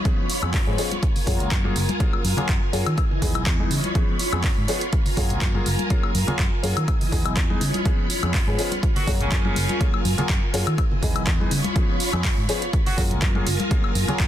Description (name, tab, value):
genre	filtered disco house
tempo	123 BPM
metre	4/4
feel	swing 54% on 16ths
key	F# major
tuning	A4 = 444 Hz
part	clear concert grand piano	accompaniment	0.0-14.2 s	E3 to G#4	-29 LUFS	left 3 dB	phaser, sidechain pumping, low-pass filter
part	string machine, full ensemble	sustained chords	0.0-14.3 s	E3 to B5	-29 LUFS	right 1 dB	ensemble chorus, sidechain pumping, low-pass filter
part	electronic kick drum	drums	0.1-14.3 s	none	-22 LUFS	equal	none
part	punchy analog drum machine	drums	0.1-14.3 s	handclaps, hi-hat, woodblock	-28 LUFS	left 1 dB	sidechain pumping on hats, sidechain pumping on perc
part	tube shaker and congas	percussion	0.1-14.3 s	none	-31 LUFS	left 2 dB	sidechain pumping on perc, low-pass filter on perc
part	fingered electric bass	bass	0.4-14.3 s	F#1 to D#3	-25 LUFS	equal	tube saturation, sidechain pumping, low-pass filter
part	clear horn section	melody	9.0-9.9, 12.9-13.0 s	C#3 to F#4	-30 LUFS	right 1 dB	sidechain pumping, low-pass filter
room	small room ambience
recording	dense, heavily limited modern master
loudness	-20 LUFS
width	side -11 dB against mid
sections	0.0-14.3 A section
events	none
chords	0.0 C#7; 1.0 F#maj9; 3.0 Emaj7; 3.7 C#7; 4.9 F#maj9; 6.9 Emaj7; 7.6 C#7; 8.8 F#maj9; 10.8 Emaj7; 11.5 C#7; 12.7 F#maj9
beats	0.05 0.54 | 1.03 1.51 2.00 2.49 | 2.98 3.47 3.95 4.44 | 4.93 5.42 5.91 6.39 | 6.88 7.37 7.86 8.34 | 8.83 9.32 9.81 10.29 | 10.78 11.27 11.76 12.25 | 12.73 13.22 13.71 14.20